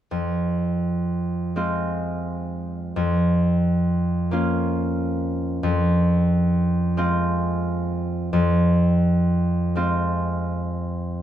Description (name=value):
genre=classical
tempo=44 BPM (dotted quarters)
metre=6/8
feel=uneven beats, rubato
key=F minor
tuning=A4 = 440 Hz
part: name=concert harp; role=accompaniment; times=0.1-11.2 s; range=F2 to F4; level=-20 LUFS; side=equal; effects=none
room=moderate studio reverb, RT60 0.6 s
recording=minimal, uncompressed stereo recording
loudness=-20 LUFS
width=side -11 dB against mid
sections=0.1-11.2 A section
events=none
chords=0.1 Fm; 3.0 Bbm/F; 5.6 Fm